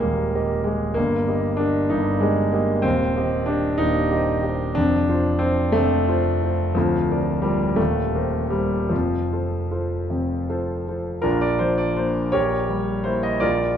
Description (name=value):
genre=classical, romantic character piece for solo piano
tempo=50-64 BPM (dotted quarters)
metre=6/8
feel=rubato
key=Bb major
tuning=A4 = 440 Hz
part: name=warm grand piano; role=solo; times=0.0-13.8 s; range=D1 to Eb5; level=-19 LUFS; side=equal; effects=none
room=moderate recital hall reverb, RT60 1.5 s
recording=none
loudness=-19 LUFS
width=side -8 dB against mid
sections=0.0-11.2 A section; 11.2-13.8 B section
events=none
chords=0.0 Eb; 1.0 Eb/G; 2.9 Cm/Eb; 4.8 F; 6.8 Bb/D; 7.8 Cm7/Eb; 8.9 F; 11.2 Bb; 12.4 Bbdim7